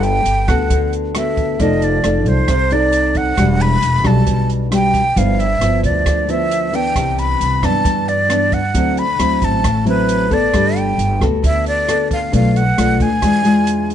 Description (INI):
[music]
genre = bossa nova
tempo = 134 BPM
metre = 4/4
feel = straight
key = G major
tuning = A4 = 440 Hz
[part]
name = breathy jazz flute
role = melody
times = 0.0-13.9 s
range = B4 to B5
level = -18 LUFS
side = equal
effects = none
[part]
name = nylon-string guitar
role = accompaniment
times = 0.0-13.9 s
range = G2 to D5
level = -18 LUFS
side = left 1 dB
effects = none
[part]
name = upright bass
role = bass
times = 0.0-13.9 s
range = E1 to G2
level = -19 LUFS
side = equal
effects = none
[part]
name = open jazz drum kit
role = drums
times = 0.0-13.9 s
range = hi-hat, kick drum, rim click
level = -23 LUFS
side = right 1 dB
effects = none
[sound]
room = little or no reverb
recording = dark, warm production, nothing above 10.6 kHz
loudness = -13 LUFS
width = side -10 dB against mid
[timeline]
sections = 0.0-13.9 A section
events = none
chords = 0.0 Gmaj9; 1.6 F6; 3.4 Em9; 5.2 G6; 7.0 Cmaj9; 8.7 D9; 10.5 Gmaj9; 12.3 Bm7b5; 13.2 E7b9